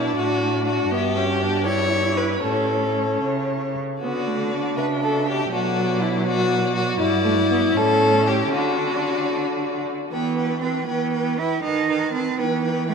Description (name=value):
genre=quick classical-period movement for string quartet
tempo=75-82 BPM (dotted quarters)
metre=6/8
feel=rubato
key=D major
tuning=A4 = 435 Hz
part: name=warm violin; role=melody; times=0.0-12.9 s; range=C#5 to A5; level=-30 LUFS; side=left 7 dB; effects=none
part: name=rich violin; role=second line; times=0.0-12.9 s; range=E4 to C#5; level=-22 LUFS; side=left 2 dB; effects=none
part: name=warm viola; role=accompaniment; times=0.0-12.9 s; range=D#3 to E4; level=-26 LUFS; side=right 2 dB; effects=none
part: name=warm cello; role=bass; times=0.0-12.9 s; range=G2 to E4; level=-26 LUFS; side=right 6 dB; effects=none
room=wet cathedral reverb, RT60 5.6 s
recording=in a vast, echoing space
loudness=-19 LUFS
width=side -5 dB against mid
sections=0.0-10.1 A section; 10.1-12.9 B section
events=none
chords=0.0 Bm; 0.9 Em7/G; 2.4 A; 4.0 D; 5.5 Bm; 7.0 Em7/G; 7.8 A; 8.5 D; 10.1 Em; 11.6 B7/D#; 12.4 Em